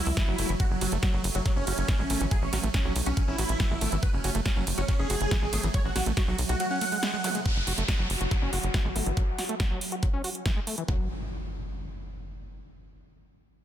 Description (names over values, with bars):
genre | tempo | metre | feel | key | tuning
psychedelic trance | 140 BPM | 4/4 | straight | F# minor | A4 = 441 Hz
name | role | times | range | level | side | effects
dense compressed supersaw | melody | 0.0-7.4 s | F#3 to F#5 | -32 LUFS | right 1 dB | phaser, vintage 12-bit sampler grit, sidechain pumping, dub echo
pulsing gated texture | sustained chords | 0.0-10.9 s | F#3 to F#4 | -36 LUFS | right 3 dB | chorus, built-in reverb, sidechain pumping
tight sequencer bass | bass | 0.1-11.1 s | F#1 to C#2 | -30 LUFS | equal | none
big-room dance drum kit | drums | 0.1-10.9 s | hi-hat, ride cymbal, snare drum | -33 LUFS | right 2 dB | studio ambience
overdriven acid bass | riff | 0.2-11.1 s | E3 to F#4 | -36 LUFS | moving between left 4 dB and right 5 dB | auto-pan, sidechain pumping, dub echo
electronic kick drum | drums | 0.2-11.0 s | none | -27 LUFS | equal | studio ambience
zap, downlifter and impact | sound effects | 7.2-12.6 s | none | -36 LUFS | equal | none
room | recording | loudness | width
digital ambience | dense, heavily limited modern master | -25 LUFS | side -11 dB against mid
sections
0.0-7.5 A section; 7.5-10.9 B section; 10.9-12.6 C section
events
drop 0.0-7.5; filter sweep on acid bass 7.5-10.9; filter sweep on synth texture 7.5-10.9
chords
0.0 F#5; 10.9 N.C.